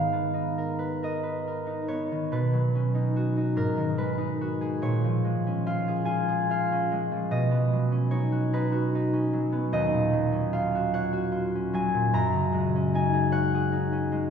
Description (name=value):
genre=classical, solo harp piece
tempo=49 BPM (dotted quarters)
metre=6/8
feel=uneven beats, rubato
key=G# dorian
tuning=A4 = 439 Hz
part: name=concert harp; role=solo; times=0.0-14.3 s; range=D#2 to A#5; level=-24 LUFS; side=equal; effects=none
room=wet scoring stage reverb, RT60 2.0 s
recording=heard from further back in the room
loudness=-24 LUFS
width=side -7 dB against mid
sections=0.0-14.3 A section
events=none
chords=0.0 G#madd9; 2.3 Badd9; 3.5 G#m7; 4.8 A#m7; 7.3 Badd9; 9.7 D#m9; 12.1 F#69